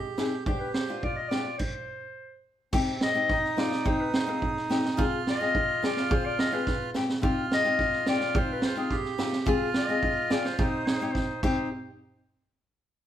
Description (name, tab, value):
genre	klezmer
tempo	107 BPM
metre	2/4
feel	straight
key	C harmonic minor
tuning	A4 = 441 Hz
part	warm clarinet	melody	0.0-11.7 s	Ab4 to Eb5	-30 LUFS	left 3 dB	none
part	accordion	second line	0.0-11.7 s	C4 to G4	-32 LUFS	right 4 dB	none
part	nylon-string guitar	accompaniment	0.2-11.7 s	B3 to Ab4	-31 LUFS	left 4 dB	none
part	street-band drum kit	drums	0.2-11.6 s	crash cymbal, kick drum, snare drum	-29 LUFS	right 1 dB	none
room	moderate stone room reverb, RT60 0.9 s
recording	band playing live in one room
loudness	-25 LUFS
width	side -11 dB against mid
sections	0.0-2.7 A section; 2.7-11.7 B section; 11.7-12.8 C section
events	stop 1.6-2.7; drum fill 6.7-7.2, 11.2-11.7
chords	0.5 G; 1.6 N.C.; 2.7 Cm; 5.0 Fm; 7.2 Cm; 9.5 Fm; 10.6 Cm; 11.7 N.C.